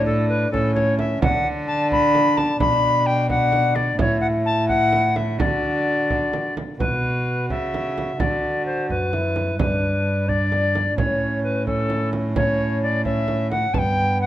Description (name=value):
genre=classical, renaissance-style consort dance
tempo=86 BPM (dotted quarters)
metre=6/8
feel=straight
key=D major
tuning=A4 = 440 Hz
part: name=tenor recorder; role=melody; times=0.0-14.3 s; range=A4 to B5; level=-22 LUFS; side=left 2 dB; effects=none
part: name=dark bassoon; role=accompaniment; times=0.0-14.3 s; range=B3 to F#4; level=-25 LUFS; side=left 1 dB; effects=none
part: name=rich cello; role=bass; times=0.0-14.3 s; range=F#2 to D3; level=-24 LUFS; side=right 1 dB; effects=none
part: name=frame drum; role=percussion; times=0.5-14.0 s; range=none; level=-27 LUFS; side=right 3 dB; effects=none
room=moderate recital hall reverb, RT60 1.4 s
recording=none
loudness=-18 LUFS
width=side -12 dB against mid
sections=0.0-6.8 A section; 6.8-14.3 B section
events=none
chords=0.0 Asus4; 0.5 A; 1.2 D5; 2.6 Bm; 4.0 A5; 5.4 D; 6.8 B5; 8.2 D; 9.6 G; 11.0 A; 13.7 G